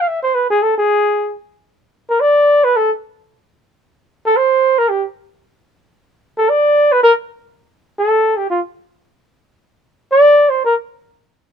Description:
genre	jazz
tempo	free time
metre	none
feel	none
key	unclear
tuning	A4 = 441 Hz
part	mellow flugelhorn	solo	0.0-10.7 s	F4 to F5	-11 LUFS	equal	none
room	little or no reverb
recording	close, detailed microphones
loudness	-12 LUFS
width	side -7 dB against mid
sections	0.0-7.8 A section; 7.8-11.5 A section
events	flugelhorn solo 0.0-7.8, 7.8-11.5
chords	none

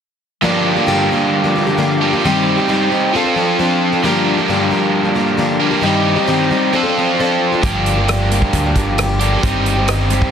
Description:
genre	folk rock and heartland rock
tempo	133 BPM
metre	4/4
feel	straight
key	G minor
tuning	A4 = 440 Hz
part	picked plugged-in twelve-string acoustic guitar	accompaniment	0.4-10.3 s	G2 to A4	-18 LUFS	left 3 dB	none
part	overdriven electric guitar	riff	0.4-10.3 s	G2 to Bb4	-15 LUFS	right 2 dB	none
part	picked electric bass	bass	7.6-10.2 s	G1 to D2	-18 LUFS	equal	none
part	loose indie drum kit	drums	7.6-10.3 s	hi-hat, kick drum, rim click	-20 LUFS	equal	none
room	moderate studio ambience, RT60 0.5 s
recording	dense, heavily limited modern master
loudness	-13 LUFS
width	side -8 dB against mid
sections	0.4-10.3 A section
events	none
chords	0.4 Gm7; 2.2 Cm/G; 3.1 F6; 4.0 Gm7; 5.8 Cm/G; 6.7 F6; 7.6 Gm7; 9.4 Cm/G

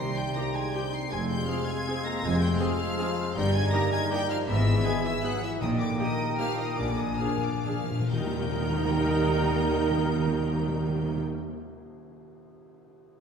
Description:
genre	classical, orchestral ballroom waltz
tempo	127-173 BPM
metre	3/4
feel	rubato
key	Eb major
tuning	A4 = 441 Hz
part	clear studio violin section	melody	0.0-11.2 s	D6 to C7	-38 LUFS	left 3 dB	none
part	dark clarinet	second line	0.0-11.2 s	B3 to Eb4	-38 LUFS	left 1 dB	none
part	mellow cor anglais	second line	0.0-11.2 s	Bb4 to C5	-42 LUFS	right 1 dB	none
part	silver concert flute	second line	0.0-11.2 s	Eb5 to Bb5	-38 LUFS	left 1 dB	none
part	warm symphonic violin section	second line	0.0-11.2 s	D5 to C6	-39 LUFS	left 1 dB	none
part	dark bassoon	accompaniment	0.0-11.2 s	G3 to Bb3	-37 LUFS	right 2 dB	none
part	dark French horn section	sustained chords	0.0-11.2 s	D3 to C4	-36 LUFS	left 1 dB	none
part	concert harp	arpeggios	0.0-12.0 s	F2 to G5	-36 LUFS	left 3 dB	none
part	clear symphonic cello section	bass	0.0-11.2 s	F2 to Eb3	-32 LUFS	right 1 dB	none
part	clear symphonic double bass section	bass	0.0-11.2 s	F1 to Eb2	-32 LUFS	equal	none
part	warm trumpet	stabs	0.3-11.2 s	G4 to Bb4	-38 LUFS	right 2 dB	none
part	rich symphonic viola section	accompaniment	0.4-11.2 s	Bb3 to Bb4	-38 LUFS	equal	none
part	clear trombone section	sustained chords	0.4-11.2 s	Bb2 to Eb4	-38 LUFS	right 4 dB	none
part	cymbal swell and tam-tam	percussion	5.6-9.8 s	none	-42 LUFS	right 2 dB	none
part	timpani	percussion	5.6-11.2 s	Bb2 to Eb3	-32 LUFS	equal	none
room	wet scoring stage reverb, RT60 1.6 s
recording	heard from further back in the room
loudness	-25 LUFS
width	side -6 dB against mid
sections	0.0-8.1 A section; 8.1-10.8 B section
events	slowing down 5.0-8.1; timpani fill 6.8-8.1; band accent 8.1-8.5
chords	0.0 Cm; 1.1 Fm; 3.4 Eb/G; 4.5 E/G#; 5.6 Eb/Bb; 6.8 Bb7; 8.1 Eb

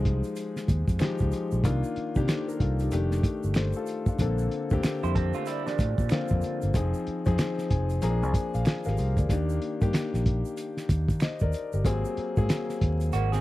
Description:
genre	R&B, neo-soul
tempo	94 BPM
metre	4/4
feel	swing 62% on 16ths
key	F minor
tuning	A4 = 440 Hz
part	warm concert grand piano	accompaniment	0.0-13.4 s	D3 to Bb5	-30 LUFS	left 3 dB	none
part	fingered electric bass	bass	0.0-13.4 s	F1 to Eb3	-27 LUFS	equal	none
part	cloth-damped thuddy drum kit	drums	0.1-13.4 s	hi-hat, kick drum, snare drum	-27 LUFS	equal	none
part	egg shaker and finger snaps	percussion	0.2-13.4 s	none	-46 LUFS	right 9 dB	none
part	electric guitar through a small old amp	second line	5.0-6.6, 13.1-13.4 s	F3 to C5	-32 LUFS	right 8 dB	none
room	little or no reverb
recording	dry, close 1970s-style studio recording, vinyl crackle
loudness	-24 LUFS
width	side -16 dB against mid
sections	0.0-13.4 A section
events	grand piano fill 7.4-9.3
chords	0.0 Fm9; 1.6 Cm11; 2.9 F13; 4.2 Bbmaj9; 6.7 Fm7; 8.0 Bb7; 9.3 Ebmaj7; 11.8 Ab9

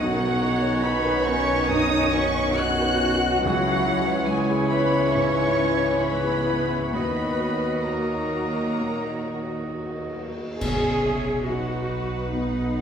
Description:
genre	cinematic, emotional film score for orchestra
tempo	64-72 BPM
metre	4/4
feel	rubato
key	unclear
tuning	A4 = 440 Hz
part	muted studio violin section	melody	0.0-12.8 s	D#5 to F#6	-29 LUFS	left 1 dB	none
part	bright oboe	second line	0.0-10.2 s	C#5 to D#5	-32 LUFS	right 1 dB	none
part	mellow hollow small flute group	second line	0.0-9.7 s	F#4 to F#5	-29 LUFS	left 2 dB	none
part	muted studio violin section	second line	0.0-12.8 s	C#4 to C#5	-34 LUFS	left 3 dB	none
part	warm clarinet	second line	0.0-10.2 s	D#4 to F#4	-33 LUFS	left 1 dB	none
part	dark grand piano	accompaniment	0.0-12.8 s	B1 to E5	-29 LUFS	left 1 dB	none
part	muted studio viola section	accompaniment	0.0-12.8 s	D#3 to D#4	-32 LUFS	right 2 dB	none
part	mellow French horn section	sustained chords	0.0-10.2 s	D#3 to D#4	-29 LUFS	left 2 dB	none
part	muted studio cello section	bass	0.0-12.8 s	F#3 to G#4	-29 LUFS	right 2 dB	none
part	muted studio double bass section	bass	0.0-12.8 s	B1 to D#2	-31 LUFS	right 4 dB	none
part	cymbal swell, clash cymbals and concert bass drum	percussion	6.9-12.3 s	none	-34 LUFS	right 1 dB	none
room	wet recital hall reverb, RT60 1.6 s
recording	recorded in a church or concert hall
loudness	-21 LUFS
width	side -7 dB against mid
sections	0.0-10.6 A section; 10.6-12.8 B section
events	band accent 10.6-11.5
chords	0.0 Badd9; 3.5 C#m; 6.9 D#m; 10.6 Badd9

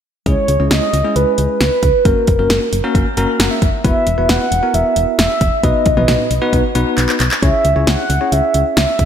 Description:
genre	synth-pop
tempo	134 BPM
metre	4/4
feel	straight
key	C# dorian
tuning	A4 = 440 Hz
part	mellow horn-like synth lead	melody	0.3-9.1 s	A#4 to F#5	-16 LUFS	right 2 dB	chorus, ping-pong delay
part	bell-like tine electric piano	accompaniment	0.3-8.8 s	G#3 to A#5	-20 LUFS	left 2 dB	fast stereo tremolo
part	solid FM bass	bass	0.3-9.1 s	E1 to C#2	-18 LUFS	equal	none
part	deep house drum kit	drums	0.3-9.1 s	handclaps, hi-hat, kick drum, snare drum, toms	-17 LUFS	equal	overdrive
room	moderate lush hall reverb, RT60 1.8 s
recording	bright 1980s-style digital production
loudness	-12 LUFS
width	side -8 dB against mid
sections	0.3-9.1 A section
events	tine electric piano fill 2.9-3.8; drum fill 7.0-7.4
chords	0.3 C#m7; 2.1 F#; 3.8 Esus2; 5.6 B; 7.4 C#m

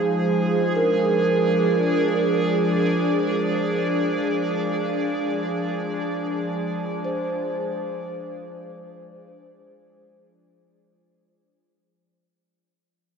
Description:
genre	ambient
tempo	free time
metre	none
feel	none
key	F dorian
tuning	A4 = 437 Hz
part	airy breathy pad	sustained chords	0.0-11.6 s	F3 to D5	-23 LUFS	right 1 dB	chorus
part	overtone-sweeping drone	drone	0.0-11.7 s	F3	-29 LUFS	equal	chorus, built-in reverb
part	vibraphone with soft mallets	arpeggios	0.8-11.6 s	Bb4 to C5	-27 LUFS	right 2 dB	tape echo
room	wet plate reverb, RT60 3.7 s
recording	echo-heavy mix, nothing above 7.9 kHz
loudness	-21 LUFS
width	side -6 dB against mid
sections	0.0-11.6 A section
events	fade-out 2.0-11.6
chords	0.0 Fm7

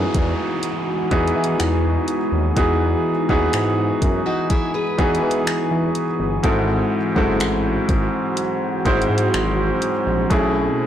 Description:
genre	contemporary R&B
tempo	62 BPM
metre	4/4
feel	straight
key	E major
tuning	A4 = 442 Hz
part	clear grand piano	accompaniment	0.0-10.9 s	G#2 to B#4	-20 LUFS	equal	none
part	deep dark ambient pad	sustained chords	0.1-10.9 s	C#3 to G#4	-26 LUFS	equal	chorus, built-in reverb
part	smooth synth bass	bass	0.0-10.7 s	F#1 to E3	-23 LUFS	equal	transformer saturation
part	downlifter and swell	sound effects	0.0-10.9 s	none	-36 LUFS	right 1 dB	none
part	smooth R&B drum kit	drums	0.1-10.5 s	finger snaps, hi-hat, kick drum	-22 LUFS	equal	soft clipping on snare
part	picked steel-string acoustic guitar	arpeggios	4.3-6.2 s	D#4 to B4	-26 LUFS	left 2 dB	digital delay
room	light reverb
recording	blown-out, overdriven recording, overdrive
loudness	-17 LUFS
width	side -10 dB against mid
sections	0.0-10.9 A section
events	none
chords	0.0 Emaj9; 6.4 G#7b9b13; 10.3 B13sus4

